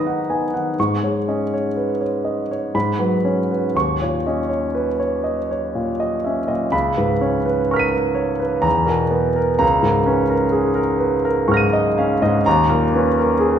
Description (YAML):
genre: classical, impressionist solo piano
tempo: 62 BPM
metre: 3/4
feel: uneven beats, rubato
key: unclear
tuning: A4 = 440 Hz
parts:
  - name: clear concert grand piano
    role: solo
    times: 0.0-13.6 s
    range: C#2 to D#7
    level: -16 LUFS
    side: equal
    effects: none
room: wet recital hall reverb, RT60 1.3 s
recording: recorded in a church or concert hall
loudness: -17 LUFS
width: side -9 dB against mid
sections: 0.0-13.6 A section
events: none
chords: 0.0 G#m9; 0.8 C#5/G#; 2.7 F#sus24/G#; 3.7 D#5; 6.7 C#9; 8.7 E5; 9.6 C#69; 12.5 D#5